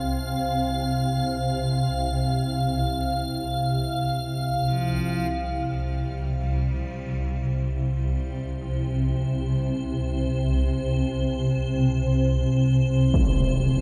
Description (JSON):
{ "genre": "dark ambient drone", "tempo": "free time", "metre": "none", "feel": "none", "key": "unclear", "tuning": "A4 = 440 Hz", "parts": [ { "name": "gamelan-type bossed gongs", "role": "arpeggios", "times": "0.0-3.2 s", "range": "none", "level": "barely audible", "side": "none", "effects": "none" }, { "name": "swarming drone", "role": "drone", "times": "0.0-13.8 s", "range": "C2 to C3", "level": "-26 LUFS", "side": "equal", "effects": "built-in reverb" }, { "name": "icy glass pad", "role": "texture", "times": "0.0-13.8 s", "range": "C5 to F5", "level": "-34 LUFS", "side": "equal", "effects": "chorus, built-in reverb, shimmer reverb" }, { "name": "warm cello", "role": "melody", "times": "4.7-10.2 s", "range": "F3 to G3", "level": "-40 LUFS", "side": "equal", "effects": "shimmer reverb, delay" }, { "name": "impact", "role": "percussion", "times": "13.1-13.4 s", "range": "none", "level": "-24 LUFS", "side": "equal", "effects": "low-pass filter on sfx" } ], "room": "wet huge ambient reverb, RT60 7.7 s", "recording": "none", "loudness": "-25 LUFS", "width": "mono", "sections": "0.0-5.3 A section; 5.3-13.8 B section", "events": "fade-in on ambient pad 5.3-13.8; fade-in on cello 5.3-13.8; filter sweep on synth drone 5.3-13.8", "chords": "0.0 Csus4; 5.3 C5", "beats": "free time" }